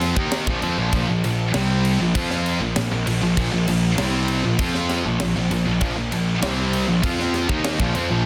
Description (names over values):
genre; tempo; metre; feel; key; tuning
heavy metal; 98 BPM; 4/4; straight; unclear; A4 = 436 Hz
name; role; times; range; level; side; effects
heavy high-gain guitar; riff; 0.0-8.2 s; Bb2 to F4; -29 LUFS; equal; distortion
high-gain distorted guitar; riff; 0.0-8.2 s; Bb2 to F4; -29 LUFS; equal; distortion
sludgy distorted guitar; riff; 0.0-8.2 s; Bb2 to F4; -27 LUFS; equal; overdrive
fuzz picked electric bass; bass; 0.0-8.2 s; Bb1 to F2; -28 LUFS; equal; overdrive
tight metal drum kit; drums; 0.0-8.1 s; crash cymbal, kick drum, snare drum; -28 LUFS; equal; none
room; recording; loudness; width
small room ambience; dense, heavily limited modern master; -21 LUFS; mono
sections
0.0-8.3 A section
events
none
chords
0.0 Bb5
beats
0.32 | 0.93 1.54 2.15 2.77 | 3.38 3.98 4.59 5.20 | 5.81 6.42 7.03 7.64